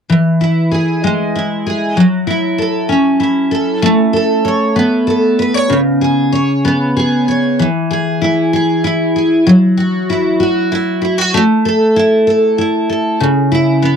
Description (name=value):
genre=pop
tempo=64 BPM (dotted quarters)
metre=6/8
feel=straight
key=E major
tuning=A4 = 440 Hz
part: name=picked steel-string acoustic guitar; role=accompaniment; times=0.1-14.0 s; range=C#3 to C#5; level=-11 LUFS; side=equal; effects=double-tracked left and right
room=light reverb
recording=dry, close 1970s-style studio recording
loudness=-11 LUFS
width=side -7 dB against mid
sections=0.1-7.6 A section; 7.6-14.0 B section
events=none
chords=0.1 E; 2.0 F#m7; 3.8 Aadd9; 5.7 C#5; 7.6 E; 9.5 Esus2/F#; 11.3 A5; 13.2 C#m7